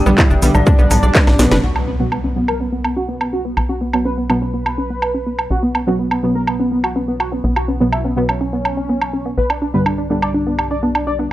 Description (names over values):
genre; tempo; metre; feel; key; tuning
melodic techno; 124 BPM; 4/4; straight; B minor; A4 = 440 Hz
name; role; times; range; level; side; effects
dark analog pad; sustained chords; 0.0-11.3 s; B3 to D5; -33 LUFS; equal; none
analog pluck; arpeggios; 0.0-11.2 s; B3 to D6; -23 LUFS; equal; chorus, sidechain pumping, tape echo
tight sequencer bass; bass; 0.0-11.3 s; F#1 to B1; -21 LUFS; equal; sidechain pumping
wide unison lead; melody; 0.1-11.3 s; G3 to D5; -22 LUFS; equal; lush chorus, tape echo
dark detuned synth bell; second line; 0.1-1.5 s; G4 to E5; -26 LUFS; left 3 dB; chorus, sidechain pumping, tape echo
synth brass stab; stabs; 0.1-11.3 s; G2 to B3; -21 LUFS; right 1 dB; chorus, sidechain pumping, tape echo
techno drum kit; drums; 0.1-11.0 s; handclaps, hi-hat, shaker, snare drum, toms, woodblock; -19 LUFS; right 1 dB; overdrive, sidechain pumping on perc, sidechain pumping on toms, sidechain pumping on hats
electronic kick drum; drums; 0.2-1.2 s; none; -12 LUFS; equal; overdrive
impact; sound effects; 1.6-3.6 s; none; -26 LUFS; equal; none
room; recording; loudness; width
digital ambience; dry, gritty hardware recording; -14 LUFS; side -15 dB against mid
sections
0.0-1.6 A section; 1.6-11.3 B section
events
drop 0.0-1.6; drum fill 1.2-1.6; band accent 1.5; impact 1.6-3.6; filter sweep on synth arpeggio sound 1.6-11.3; filter sweep on analog synth lead 1.6-11.3; filter sweep on synth stab 1.6-11.3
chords
0.0 G; 1.6 Bsus2; 9.4 G/B